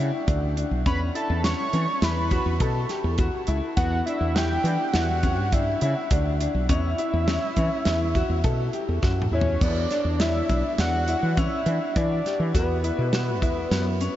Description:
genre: progressive instrumental, band music in an uneven meter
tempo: 103 BPM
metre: 5/4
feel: straight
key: E dorian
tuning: A4 = 440 Hz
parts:
  - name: bright grand piano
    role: arpeggios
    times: 0.0-14.2 s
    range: B3 to A4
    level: -29 LUFS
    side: left 3 dB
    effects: analog delay
  - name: woody fretless electric bass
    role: bass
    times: 0.0-14.1 s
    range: B1 to E3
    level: -25 LUFS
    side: equal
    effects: none
  - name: modern studio drum kit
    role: drums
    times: 0.3-14.1 s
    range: crash cymbal, hi-hat, kick drum, snare drum, toms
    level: -27 LUFS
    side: equal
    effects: none
  - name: fat analog lead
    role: melody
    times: 0.9-14.2 s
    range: B4 to C#6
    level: -28 LUFS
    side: equal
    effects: analog delay
  - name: tube shaker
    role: percussion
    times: 9.6-14.2 s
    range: none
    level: -51 LUFS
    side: right 5 dB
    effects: none
room: moderate huge ambient reverb, RT60 8.2 s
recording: dreamy mix soaked in reverb, nothing above 7.7 kHz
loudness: -21 LUFS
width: side -12 dB against mid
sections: 0.0-9.6 A section; 9.6-14.2 B section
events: drum fill 9.0-9.6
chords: 0.0 E7(no3); 0.9 F#m7/E; 3.8 Em7; 6.7 F#7(no3)/E; 9.6 E7(no3); 12.5 Esus2

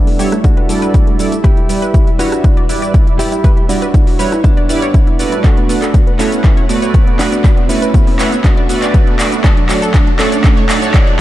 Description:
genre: progressive house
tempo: 120 BPM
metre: 4/4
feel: straight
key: E dorian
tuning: A4 = 437 Hz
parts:
  - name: direct-recorded clean electric guitar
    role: melody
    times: 0.0-10.6 s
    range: F#3 to G4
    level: -19 LUFS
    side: equal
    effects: sidechain pumping, low-pass filter, digital delay
  - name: supersaw pad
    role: sustained chords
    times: 0.0-11.2 s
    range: G3 to F#5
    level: -23 LUFS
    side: equal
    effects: sidechain pumping
  - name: wide unison pluck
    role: arpeggios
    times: 0.0-11.2 s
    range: A3 to D5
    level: -21 LUFS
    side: right 1 dB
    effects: sidechain pumping, digital delay
  - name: riser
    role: sound effects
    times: 2.7-11.2 s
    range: none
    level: -29 LUFS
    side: right 2 dB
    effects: none
  - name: deep house drum kit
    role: drums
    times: 0.1-11.2 s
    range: cabasa, handclaps, hi-hat, rim click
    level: -21 LUFS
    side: equal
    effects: overdrive, high-pass filter on hats, high-pass filter on perc, high-pass filter on snare
  - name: chorused polysynth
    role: stabs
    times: 0.2-11.2 s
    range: G3 to D5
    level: -19 LUFS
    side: right 4 dB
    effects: sidechain pumping
  - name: electronic kick drum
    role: drums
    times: 0.4-11.0 s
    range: none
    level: -10 LUFS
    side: equal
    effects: overdrive
room: light reverb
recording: dark, warm production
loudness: -9 LUFS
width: side -14 dB against mid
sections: 0.0-11.2 A section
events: build-up 0.0-11.2; filter sweep on synth pluck 0.0-11.2; filter sweep on clean electric guitar 0.0-11.2; drum fill 5.4-11.2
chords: 0.0 A7sus4; 1.4 Em7; 5.4 Bm7; 9.4 Dmaj7

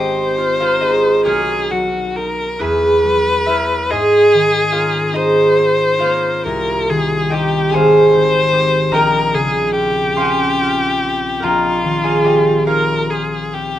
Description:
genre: classical, impressionist duo for violin and harp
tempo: 44-51 BPM (dotted quarters)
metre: 6/8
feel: rubato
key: Ab major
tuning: A4 = 440 Hz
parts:
  - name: rich violin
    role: melody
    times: 0.0-13.8 s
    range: F4 to C5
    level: -17 LUFS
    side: left 2 dB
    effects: none
  - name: concert harp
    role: accompaniment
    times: 0.0-13.8 s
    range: Ab1 to C6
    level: -15 LUFS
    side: equal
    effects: none
room: little or no reverb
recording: close, detailed microphones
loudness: -13 LUFS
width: side -12 dB against mid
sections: 0.0-13.8 A section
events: none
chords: 0.0 Ab6; 1.3 Bmaj7; 2.6 Eadd9; 3.9 Abadd9; 6.5 Cm7; 7.7 Abmaj7; 8.9 Bbm9

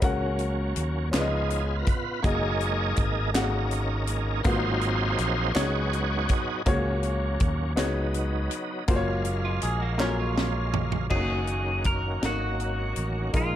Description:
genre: slow gospel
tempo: 54 BPM (dotted quarters)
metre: 6/8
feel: straight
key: F# major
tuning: A4 = 440 Hz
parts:
  - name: warm upright piano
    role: accompaniment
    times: 0.0-13.6 s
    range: G#2 to F#5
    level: -31 LUFS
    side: left 2 dB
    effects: none
  - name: bright tonewheel organ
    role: sustained chords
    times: 0.0-13.6 s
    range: D#3 to E#5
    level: -30 LUFS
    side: right 2 dB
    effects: slow rotary speaker, overdrive, chorus vibrato
  - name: fingered electric bass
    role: bass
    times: 0.0-13.6 s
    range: F#1 to D#2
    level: -28 LUFS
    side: equal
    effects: none
  - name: tight funk drum kit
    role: drums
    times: 0.0-13.5 s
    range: crash cymbal, hi-hat, kick drum, snare drum, toms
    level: -28 LUFS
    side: equal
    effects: none
  - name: group handclap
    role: percussion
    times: 1.1-10.3 s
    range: none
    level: -37 LUFS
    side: right 4 dB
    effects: none
  - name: clean electric guitar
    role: second line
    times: 9.4-11.1 s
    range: G#3 to C#5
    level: -33 LUFS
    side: right 5 dB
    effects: none
  - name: clean electric guitar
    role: melody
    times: 11.1-13.6 s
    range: E#4 to A#4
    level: -31 LUFS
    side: equal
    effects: lush chorus
room: light reverb, studio reverb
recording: none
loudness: -24 LUFS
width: side -11 dB against mid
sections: 0.0-11.1 A section; 11.1-13.6 B section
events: tonewheel organ solo 0.0-11.1; drum fill 10.0-11.1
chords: 0.0 F#/C#; 1.1 C#9; 2.2 F#69; 4.5 G#13; 5.6 C#9sus4; 6.7 F#/C#; 7.8 C#9sus4; 8.9 F#maj7; 11.1 F#6

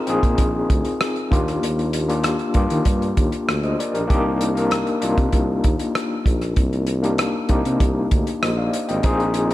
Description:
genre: lush 1970s-style soul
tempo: 97 BPM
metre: 4/4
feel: straight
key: C minor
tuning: A4 = 440 Hz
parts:
  - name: overdriven tine electric piano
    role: accompaniment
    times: 0.0-9.5 s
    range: Bb3 to G5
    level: -22 LUFS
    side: left 2 dB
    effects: medium tremolo
  - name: mellow tuba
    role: bass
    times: 0.1-9.5 s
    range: Ab1 to Eb3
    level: -24 LUFS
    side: equal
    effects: none
  - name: warm soul drum kit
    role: drums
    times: 0.1-9.5 s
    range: hi-hat, kick drum, rim click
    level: -21 LUFS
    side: equal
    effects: none
room: small room ambience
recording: none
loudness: -18 LUFS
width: side -15 dB against mid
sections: 0.0-9.5 A section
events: none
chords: 0.0 Bb7sus4; 1.3 Ebmaj7; 4.1 Cm9

